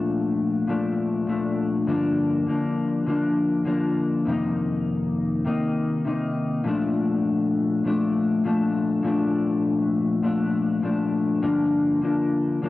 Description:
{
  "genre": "indie pop",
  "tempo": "100 BPM",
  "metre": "4/4",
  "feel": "straight",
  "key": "Bb major",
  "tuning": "A4 = 440 Hz",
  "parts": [
    { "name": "mellow electric guitar", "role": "solo", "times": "0.0-12.7 s", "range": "F2 to Eb4", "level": "-21 LUFS", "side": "left 2 dB", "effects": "lush chorus, warbly pitch drift, tape echo" }
  ],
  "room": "moderate lush hall reverb, RT60 2.9 s",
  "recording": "home recording on cassette, nothing above 10.3 kHz",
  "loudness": "-21 LUFS",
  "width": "side -16 dB against mid",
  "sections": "0.0-12.7 A section",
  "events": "none",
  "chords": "0.0 Bbmaj7; 1.9 Gm7; 4.3 F7sus4; 6.7 Bbmaj7; 11.4 Gm7",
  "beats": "0.08 0.68 1.28 | 1.87 2.47 3.07 3.67 | 4.26 4.86 5.46 6.05 | 6.65 7.25 7.85 8.45 | 9.04 9.64 10.24 10.84 | 11.43 12.03 12.63"
}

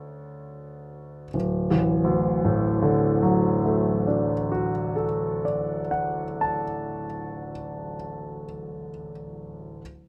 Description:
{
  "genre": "classical, romantic nocturne for solo piano",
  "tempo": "38 BPM",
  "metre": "4/4",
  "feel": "rubato",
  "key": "D major",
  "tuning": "A4 = 438 Hz",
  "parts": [
    { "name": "clear grand piano", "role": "solo", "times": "0.0-9.8 s", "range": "D1 to A5", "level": "-26 LUFS", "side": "equal", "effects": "none" }
  ],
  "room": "little or no reverb",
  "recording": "close, detailed microphones",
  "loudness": "-25 LUFS",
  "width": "mono",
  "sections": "0.0-1.3 A section; 1.3-7.6 B section",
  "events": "slowing down 0.0-1.3",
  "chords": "0.0 D",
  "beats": "| 1.33 2.92 4.49 6.07"
}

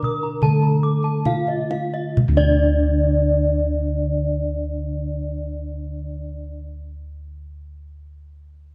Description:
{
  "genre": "Balinese gamelan",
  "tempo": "63 BPM",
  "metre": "4/4",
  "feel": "straight",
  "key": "D pelog",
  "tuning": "A4 = 441 Hz",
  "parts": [
    { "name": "gamelan-type bronze metallophone", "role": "melody", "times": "0.0-6.6 s", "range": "D4 to Bb4", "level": "-30 LUFS", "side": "equal", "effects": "none" },
    { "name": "gamelan-type bronze metallophone", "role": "accompaniment", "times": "0.0-6.6 s", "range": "D3 to D4", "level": "-32 LUFS", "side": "equal", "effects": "none" },
    { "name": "gamelan-type bronze metallophone", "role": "arpeggios", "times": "0.0-6.6 s", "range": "D5 to Eb6+35c", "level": "-29 LUFS", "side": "equal", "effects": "none" },
    { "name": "gamelan-type bossed gongs", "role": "bass", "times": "0.0-6.6 s", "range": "D2 to D5", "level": "-25 LUFS", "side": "equal", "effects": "none" },
    { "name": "kendang", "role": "percussion", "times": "0.0-2.6 s", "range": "none", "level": "-27 LUFS", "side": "equal", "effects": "none" },
    { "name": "gamelan-type bronze metallophone", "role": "arpeggios", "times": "0.2-6.6 s", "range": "D5 to D6", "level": "-30 LUFS", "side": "equal", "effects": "none" }
  ],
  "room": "moderate recital hall reverb, RT60 1.8 s",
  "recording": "dark, warm production",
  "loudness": "-21 LUFS",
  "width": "mono",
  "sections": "0.0-2.2 A section; 2.2-8.7 B section",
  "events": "slowing down 0.0-2.2",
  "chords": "none",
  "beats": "0.42 1.25 | 2.17 3.12 4.08 5.04 | 5.99"
}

